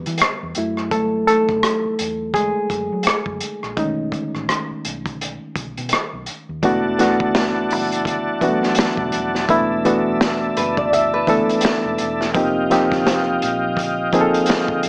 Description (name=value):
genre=R&B, neo-soul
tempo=84 BPM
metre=4/4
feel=swing 57% on 16ths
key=E phrygian from 6.6 s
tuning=A4 = 441 Hz
part: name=reed electric piano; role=accompaniment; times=0.0-14.9 s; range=D#3 to B4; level=-22 LUFS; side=equal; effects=none
part: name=vintage muted fingered electric bass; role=bass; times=0.0-14.9 s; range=D#1 to F#3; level=-35 LUFS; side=equal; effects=none
part: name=crunchy breakbeat drum kit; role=drums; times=0.1-14.9 s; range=hi-hat, kick drum, rim click, snare drum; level=-24 LUFS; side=equal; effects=none
part: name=tonewheel organ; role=sustained chords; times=6.6-14.9 s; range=F3 to A5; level=-25 LUFS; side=equal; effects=chorus vibrato, subtle chorus
part: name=flamenco guitar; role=second line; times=10.6-12.2 s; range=B4 to E5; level=-23 LUFS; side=equal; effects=none
room=moderate studio reverb, RT60 0.7 s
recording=small speaker sound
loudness=-19 LUFS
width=mono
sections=0.0-6.6 A section; 6.6-14.9 B section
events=reed electric piano solo 0.0-6.6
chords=0.0 Em9; 0.6 F#m9; 3.8 B13; 6.6 E9sus4; 12.3 F9sus4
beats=0.20 | 0.91 1.63 2.34 3.06 | 3.77 4.49 5.20 5.91 | 6.63 7.34 8.06 8.77 | 9.48 10.20 10.91 11.63 | 12.34 13.06 13.77 14.48